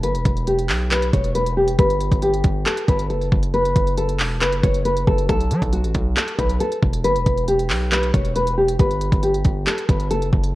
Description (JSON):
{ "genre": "hip hop, trap", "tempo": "137 BPM", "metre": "4/4", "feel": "half-time", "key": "unclear", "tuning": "A4 = 440 Hz", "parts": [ { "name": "nylon-string guitar", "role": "melody", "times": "0.0-10.3 s", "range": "F#4 to C#5", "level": "-21 LUFS", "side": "left 1 dB", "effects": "none" }, { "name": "distorted 808-style bass", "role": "bass", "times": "0.0-10.5 s", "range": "E1 to F#3", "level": "-22 LUFS", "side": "equal", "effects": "distortion" }, { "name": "trap drum kit", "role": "drums", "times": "0.0-10.5 s", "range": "handclaps, hi-hat, kick drum", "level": "-21 LUFS", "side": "equal", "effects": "overdrive" } ], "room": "little or no reverb", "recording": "worn, warbling old tape, cassette tape, warbly pitch drift", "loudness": "-17 LUFS", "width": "side -17 dB against mid", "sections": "0.0-10.6 A section", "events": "none", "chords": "0.0 Em; 1.8 G; 3.5 F#m; 5.3 B5; 7.0 Em; 8.8 G" }